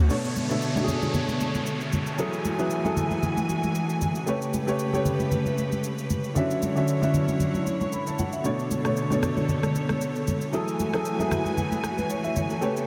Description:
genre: amapiano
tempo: 115 BPM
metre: 4/4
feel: swing 55% on 16ths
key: F# minor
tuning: A4 = 440 Hz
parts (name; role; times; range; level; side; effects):
- warm studio string section; sustained chords; 0.0-12.9 s; C#3 to G#5; -31 LUFS; equal; none
- warm grand piano; accompaniment; 0.1-12.9 s; B2 to C#6; -30 LUFS; equal; analog chorus
- electronic shaker and rim click; drums; 0.1-12.9 s; none; -41 LUFS; equal; none
- downlifter; sound effects; 0.1-4.3 s; none; -39 LUFS; equal; none
- congas; percussion; 0.4-12.5 s; none; -33 LUFS; equal; none
room: wet huge ambient reverb, RT60 4.7 s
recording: dreamy mix soaked in reverb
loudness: -26 LUFS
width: mono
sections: 0.1-12.9 A section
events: none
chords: 0.1 Bm9; 2.2 F#m9; 4.3 A9; 6.4 Dmaj9; 8.4 Bm9; 10.5 F#m9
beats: | 0.10 0.62 1.14 1.66 | 2.18 2.71 3.23 3.75 | 4.27 4.79 5.32 5.84 | 6.36 6.88 7.40 7.92 | 8.45 8.97 9.49 10.01 | 10.53 11.05 11.58 12.10 | 12.62

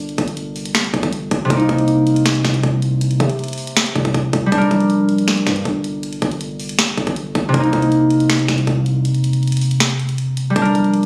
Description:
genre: hip hop, trap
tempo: 159 BPM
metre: 4/4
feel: half-time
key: unclear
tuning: A4 = 442 Hz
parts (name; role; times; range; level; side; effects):
- concert harp; accompaniment; 0.0-11.1 s; C3 to Bb4; -19 LUFS; equal; none
- long sustained 808-style bass; bass; 0.0-11.1 s; G1 to C3; -27 LUFS; equal; none
- trap drum kit; drums; 0.1-11.1 s; finger snaps, hi-hat, kick drum, snare drum; -22 LUFS; equal; none
room: light reverb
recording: recorded on a phone in the room, studio reverb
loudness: -17 LUFS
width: mono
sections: 0.0-10.6 A section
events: break 9.0-10.6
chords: 0.0 Gm; 1.5 Cm7; 4.5 Gm; 7.5 Cm7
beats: 0.37 0.75 1.12 | 1.50 1.88 2.26 2.63 | 3.01 3.39 3.77 4.14 | 4.52 4.90 5.28 5.65 | 6.03 6.41 6.79 7.16 | 7.54 7.92 8.29 8.67 | 9.05 9.43 9.80 10.18 | 10.56 10.94

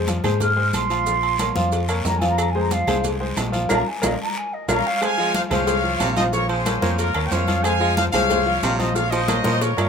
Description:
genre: latin, salsa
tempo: 182 BPM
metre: 4/4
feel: straight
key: F minor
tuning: A4 = 439 Hz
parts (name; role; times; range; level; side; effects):
- clear concert grand piano; accompaniment; 0.0-9.9 s; F3 to F5; -24 LUFS; left 2 dB; none
- fingered electric bass; bass; 0.0-9.9 s; Bb1 to Bb2; -25 LUFS; equal; none
- agogo bells and timbales; percussion; 0.1-9.9 s; none; -31 LUFS; right 6 dB; none
- congas; percussion; 0.1-9.9 s; none; -29 LUFS; left 1 dB; none
- cowbell and bongos; percussion; 0.1-9.8 s; none; -32 LUFS; left 4 dB; none
- guiro; percussion; 0.1-9.9 s; none; -35 LUFS; left 2 dB; none
- maracas; percussion; 0.1-9.9 s; none; -33 LUFS; right 8 dB; none
- claves; percussion; 0.2-9.9 s; none; -34 LUFS; equal; none
- mellow hollow silver concert flute; melody; 0.4-5.0 s; Eb5 to F6; -24 LUFS; right 2 dB; none
- bright trumpet section; melody; 4.7-9.9 s; F4 to Ab5; -22 LUFS; equal; none
- clear baritone saxophone; second line; 5.2-9.7 s; C3 to Ab3; -28 LUFS; right 3 dB; none
room: light reverb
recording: minimal, uncompressed stereo recording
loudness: -18 LUFS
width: side -6 dB against mid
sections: 0.0-5.0 A section; 5.0-9.9 B section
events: flute solo 0.0-5.0; band accent 3.7-5.0; drum fill 4.2-5.0, 9.0-9.9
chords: 0.0 Fm; 1.1 Bbm; 2.4 Fm; 3.7 Bbm; 5.0 Fm; 6.3 Bbm; 7.6 Fm; 9.0 Bbm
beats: 0.07 0.41 0.73 | 1.06 1.39 1.72 2.05 | 2.38 2.71 3.04 3.37 | 3.70 4.03 4.36 4.69 | 5.02 5.34 5.67 6.00 | 6.33 6.66 6.99 7.32 | 7.64 7.97 8.30 8.63 | 8.96 9.29 9.61

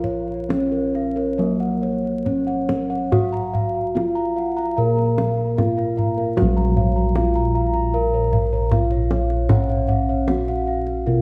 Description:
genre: Javanese gamelan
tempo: 66-77 BPM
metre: 4/4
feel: straight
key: Bb pelog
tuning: A4 = 439 Hz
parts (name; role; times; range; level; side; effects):
- gamelan-type bronze metallophone; melody; 0.0-11.2 s; Gb3-20c to Bb4; -26 LUFS; equal; none
- gamelan-type bossed gongs; arpeggios; 0.0-11.2 s; Bb4 to Bb5; -30 LUFS; equal; tape echo
- gamelan-type bronze metallophone; arpeggios; 0.0-11.2 s; Gb4-20c to Bb5; -33 LUFS; equal; none
- gamelan-type bossed gongs; bass; 0.0-11.2 s; Bb1 to Gb4-20c; -25 LUFS; equal; none
- kendang; percussion; 0.0-11.0 s; none; -26 LUFS; equal; none
room: moderate recital hall reverb, RT60 1.4 s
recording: dark, warm production, vinyl crackle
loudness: -21 LUFS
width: mono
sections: 0.0-6.4 A section; 6.4-11.2 B section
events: none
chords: none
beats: 0.49 1.39 2.26 | 3.12 3.95 4.78 5.58 | 6.37 7.15 7.93 8.72 | 9.50 10.28 11.06

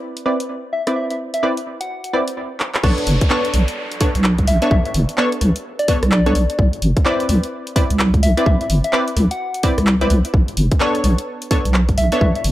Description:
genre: UK garage, two-step garage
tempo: 128 BPM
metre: 4/4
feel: swing 62% on 16ths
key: B phrygian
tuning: A4 = 440 Hz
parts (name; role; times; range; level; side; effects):
- punchy chord stab; stabs; 0.0-12.5 s; B3 to D5; -21 LUFS; equal; chorus, cassette tape, analog delay
- punchy analog drum machine; drums; 0.2-12.5 s; crash cymbal, handclaps, hi-hat, rim click; -24 LUFS; equal; none
- soft struck synth lead; melody; 0.7-12.4 s; D5 to F#5; -23 LUFS; left 1 dB; chorus, vintage 12-bit sampler grit, analog delay
- deep soft wobble bass; bass; 2.8-12.5 s; F#1 to C2; -16 LUFS; equal; chorus
- electronic kick drum; drums; 2.8-12.3 s; none; -18 LUFS; equal; none
- downlifter; sound effects; 2.8-6.6 s; none; -31 LUFS; equal; none
room: little or no reverb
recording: echo-heavy mix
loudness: -15 LUFS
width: side -15 dB against mid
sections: 0.0-2.8 A section; 2.8-12.5 B section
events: filter sweep on drum 0.0-2.8; drum fill 2.6; drop 2.8-12.5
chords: 0.0 Cmaj9; 2.8 Bm9; 6.6 Cmaj9; 10.3 Bm9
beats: 0.02 0.49 | 0.96 1.43 1.90 2.37 | 2.84 3.31 3.77 4.24 | 4.71 5.18 5.65 6.12 | 6.59 7.05 7.52 7.99 | 8.46 8.93 9.40 9.87 | 10.34 10.80 11.27 11.74 | 12.21

